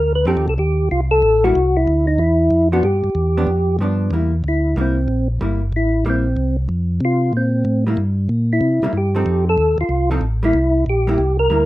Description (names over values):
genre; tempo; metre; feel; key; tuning
soul jazz organ trio; 187 BPM; 4/4; swing 64% on 8ths; C mixolydian; A4 = 439 Hz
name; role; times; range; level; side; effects
percussive tonewheel organ; melody; 0.0-11.7 s; C4 to B4; -17 LUFS; equal; slow rotary speaker, chorus vibrato
mellow tonewheel organ; bass; 0.0-11.7 s; G1 to C3; -18 LUFS; equal; slow rotary speaker
vintage hollow-body jazz guitar; accompaniment; 0.3-11.7 s; F3 to A4; -23 LUFS; right 1 dB; none
room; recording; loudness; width
moderate studio reverb, RT60 0.6 s; rough home demo mix; -15 LUFS; side -16 dB against mid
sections
0.0-4.1 A section; 4.1-11.7 B section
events
tonewheel organ solo 4.1-11.7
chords
0.3 F7; 1.6 C; 2.8 G7; 4.1 C7; 6.7 F; 8.0 C7; 9.3 F7; 10.5 C7